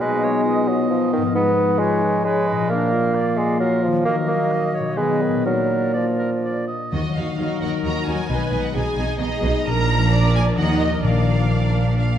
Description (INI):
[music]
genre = classical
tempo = 120-136 BPM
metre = 3/4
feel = rubato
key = Eb minor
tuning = A4 = 440 Hz
[part]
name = concert flute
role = second line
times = 0.0-6.7 s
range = Cb5 to F5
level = -30 LUFS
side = equal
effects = none
[part]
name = warm clarinet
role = second line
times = 0.0-6.7 s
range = D4 to Bb4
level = -29 LUFS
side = left 1 dB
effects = none
[part]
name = warm oboe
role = second line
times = 0.0-6.9 s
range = Bb4 to D#5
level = -30 LUFS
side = right 2 dB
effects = none
[part]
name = mellow bassoon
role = accompaniment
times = 0.0-6.7 s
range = D#3 to Cb4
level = -21 LUFS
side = right 2 dB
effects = none
[part]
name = dark French horn section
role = sustained chords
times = 0.0-6.7 s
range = Eb3 to B3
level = -24 LUFS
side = left 1 dB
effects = none
[part]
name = concert harp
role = arpeggios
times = 0.0-12.2 s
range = Ab2 to D#5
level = -25 LUFS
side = left 6 dB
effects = none
[part]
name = rich symphonic violin section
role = melody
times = 6.9-12.2 s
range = Eb5 to Bb5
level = -28 LUFS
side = equal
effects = none
[part]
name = warm symphonic violin section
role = second line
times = 6.9-12.2 s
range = D4 to Eb5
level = -29 LUFS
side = equal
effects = none
[part]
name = clear studio cello section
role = bass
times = 6.9-12.2 s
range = Bb2 to Eb3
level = -26 LUFS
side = right 2 dB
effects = none
[part]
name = clear symphonic double bass section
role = bass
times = 6.9-12.2 s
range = Bb1 to Eb2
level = -23 LUFS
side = right 2 dB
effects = none
[part]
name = timpani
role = percussion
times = 6.9-7.6, 11.0-11.7 s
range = Bb2 to Eb3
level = -25 LUFS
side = left 2 dB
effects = none
[part]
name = rich symphonic viola section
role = accompaniment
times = 7.4-12.2 s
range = Ab4 to Eb5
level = -27 LUFS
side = right 2 dB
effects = none
[sound]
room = wet scoring stage reverb, RT60 1.9 s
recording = dark, warm production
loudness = -17 LUFS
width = side -9 dB against mid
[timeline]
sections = 0.0-6.9 A section; 6.9-12.2 B section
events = none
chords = 0.0 B; 1.4 Fm7b5/Ab; 2.7 Bb; 4.0 Ebm; 5.0 B6; 5.5 Bb; 6.9 Ebm; 8.3 Abm/Cb; 9.7 Bb; 10.6 Ebm; 11.0 Bb